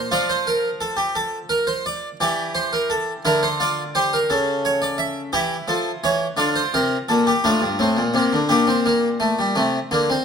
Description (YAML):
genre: classical, baroque-style 3-part fugue for harpsichord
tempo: 57 BPM (dotted quarters)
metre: 12/8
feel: straight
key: unclear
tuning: A4 = 442 Hz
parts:
  - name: harpsichord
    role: solo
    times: 0.0-10.2 s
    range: G2 to E5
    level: -18 LUFS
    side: equal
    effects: none
room: light reverb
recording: none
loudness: -18 LUFS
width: side -6 dB against mid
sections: 0.0-8.5 A section; 8.5-10.2 B section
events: none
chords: 0.1 Dm/F; 2.2 Em7b5; 4.3 A/C#; 6.4 Dm; 8.5 C7(no3)/Bb